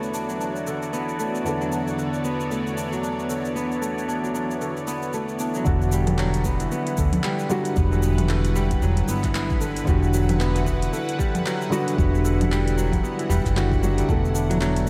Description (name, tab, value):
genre	organic downtempo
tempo	114 BPM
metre	4/4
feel	swing 58% on 16ths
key	E dorian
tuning	A4 = 441 Hz
part	felt-muted upright piano	accompaniment	0.0-14.9 s	E2 to A4	-30 LUFS	equal	sidechain pumping, tape echo
part	bowed-like drone	sustained chords	0.0-14.9 s	E3 to F#5	-33 LUFS	equal	built-in reverb, phaser, sidechain pumping
part	kora	arpeggios	0.0-14.9 s	D3 to D4	-30 LUFS	equal	tape echo
part	deep house drum kit	drums	0.0-14.9 s	cabasa, congas, handclaps, hi-hat	-34 LUFS	equal	none
part	bronze singing bowl	texture	0.0-5.7 s	none	barely audible	none	none
part	upright bass	bass	5.7-14.9 s	E1 to D2	-25 LUFS	equal	sidechain pumping
part	electronic kick drum	drums	5.7-14.2 s	none	-27 LUFS	equal	none
room	moderate cathedral reverb, RT60 6.0 s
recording	dreamy mix soaked in reverb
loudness	-23 LUFS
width	mono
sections	0.0-5.7 A section; 5.7-14.9 B section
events	none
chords	0.0 Bm7/E; 5.7 Em9; 14.1 Bm7/E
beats	0.40 0.93 | 1.45 1.98 2.51 3.03 | 3.56 4.09 4.61 5.14 | 5.67 6.19 6.72 7.24 | 7.77 8.30 8.82 9.35 | 9.88 10.40 10.93 11.45 | 11.98 12.51 13.03 13.56 | 14.09 14.61